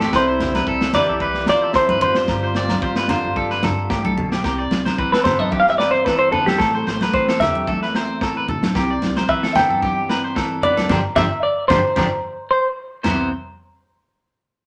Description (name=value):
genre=highlife guitar band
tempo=112 BPM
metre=4/4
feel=swing 54% on 16ths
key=C major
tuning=A4 = 440 Hz
part: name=semi-hollow electric guitar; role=melody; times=0.0-12.7 s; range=G4 to G5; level=-20 LUFS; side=equal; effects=spring reverb
part: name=breathy trumpet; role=second line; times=0.0-4.2 s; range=C4 to G4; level=-32 LUFS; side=equal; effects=none
part: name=clean electric guitar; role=accompaniment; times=0.0-13.3 s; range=E2 to F4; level=-28 LUFS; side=equal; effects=none
part: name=electric guitar at the edge of break-up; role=arpeggios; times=0.0-13.3 s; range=G4 to D5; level=-27 LUFS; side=equal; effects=none
part: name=upright bass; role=bass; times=0.0-13.3 s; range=G1 to C3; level=-32 LUFS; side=equal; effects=none
part: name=crunchy breakbeat drum kit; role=drums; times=0.0-13.2 s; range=china cymbal, kick drum, snare drum, toms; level=-27 LUFS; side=equal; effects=none
part: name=agogo bells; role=percussion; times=0.1-13.2 s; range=none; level=-33 LUFS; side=equal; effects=none
part: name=congas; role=percussion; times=0.4-13.3 s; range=none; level=-28 LUFS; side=equal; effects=none
room=wet studio reverb, RT60 0.6 s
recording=none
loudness=-19 LUFS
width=mono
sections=0.0-4.4 A section; 4.4-13.0 B section; 13.0-14.7 C section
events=clean electric guitar solo 4.4-13.0; band accent 10.9-13.0; drum fill 12.4-13.0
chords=0.1 Cmaj7; 2.3 G7sus4; 4.4 Cmaj7; 6.6 Am; 8.8 Cmaj7; 10.9 G7sus4; 13.0 Cmaj7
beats=| 0.14 0.68 1.22 1.75 | 2.29 2.83 3.37 3.91 | 4.45 4.99 5.53 6.06 | 6.60 7.14 7.68 8.22 | 8.75 9.29 9.83 10.37 | 10.90 11.44 11.97 12.51 | 13.04